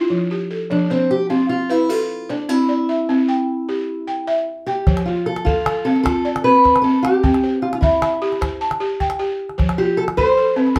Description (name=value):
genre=west african traditional, West African string and xylophone music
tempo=102 BPM (dotted quarters)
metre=12/8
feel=straight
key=F lydian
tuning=A4 = 440 Hz
part: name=balafon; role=arpeggios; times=0.0-10.8 s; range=F3 to A5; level=-22 LUFS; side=equal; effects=none
part: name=fingerpicked steel-string acoustic guitar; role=melody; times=0.7-10.8 s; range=C4 to C5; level=-21 LUFS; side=equal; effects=none
part: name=calabash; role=percussion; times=4.9-10.8 s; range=none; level=-23 LUFS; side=equal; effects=none
room=wet studio ambience, RT60 0.5 s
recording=heard from further back in the room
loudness=-18 LUFS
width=mono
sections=0.0-4.9 A section; 4.9-10.8 B section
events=none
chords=0.1 F; 2.5 C; 4.9 F; 7.2 C; 9.6 F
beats=| 0.11 0.71 1.30 1.90 | 2.50 3.09 3.69 4.28 | 4.87 5.46 6.05 6.64 | 7.23 7.82 8.41 9.00 | 9.59 10.17 10.76